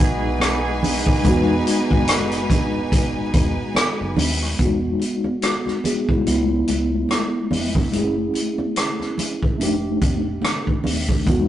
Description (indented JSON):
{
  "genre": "lush 1970s-style soul",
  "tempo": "72 BPM",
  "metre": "4/4",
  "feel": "swing 58% on 16ths",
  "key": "E major",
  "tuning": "A4 = 436 Hz",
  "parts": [
    { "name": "clear studio violin section", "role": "second line", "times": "0.0-4.5 s", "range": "D#4 to G#5", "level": "-28 LUFS", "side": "right 1 dB", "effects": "none" },
    { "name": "mellow tine electric piano", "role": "accompaniment", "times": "0.0-11.5 s", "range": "G#3 to G#4", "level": "-22 LUFS", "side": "left 1 dB", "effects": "medium stereo tremolo" },
    { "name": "muted French horn section", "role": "sustained chords", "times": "0.0-4.6 s", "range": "E3 to G#4", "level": "-27 LUFS", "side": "right 2 dB", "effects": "none" },
    { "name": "hollow-body short-scale fingered electric bass", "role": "bass", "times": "0.0-11.5 s", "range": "D#1 to C#2", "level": "-27 LUFS", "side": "equal", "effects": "none" },
    { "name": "congas", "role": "percussion", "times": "0.0-11.3 s", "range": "none", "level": "-28 LUFS", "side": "right 2 dB", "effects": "none" },
    { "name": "vintage drum kit", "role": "drums", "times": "0.4-11.5 s", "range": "hi-hat, kick drum, rim click", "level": "-21 LUFS", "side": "equal", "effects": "none" }
  ],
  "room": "moderate studio reverb, RT60 0.6 s",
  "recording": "rough rehearsal-room recording, tube saturation, nothing above 10.7 kHz",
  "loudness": "-18 LUFS",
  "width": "side -12 dB against mid",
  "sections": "0.0-4.6 A section; 4.6-11.5 B section",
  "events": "none",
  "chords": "0.0 Emaj9; 6.3 C#7alt; 7.9 F#m7; 9.6 F13"
}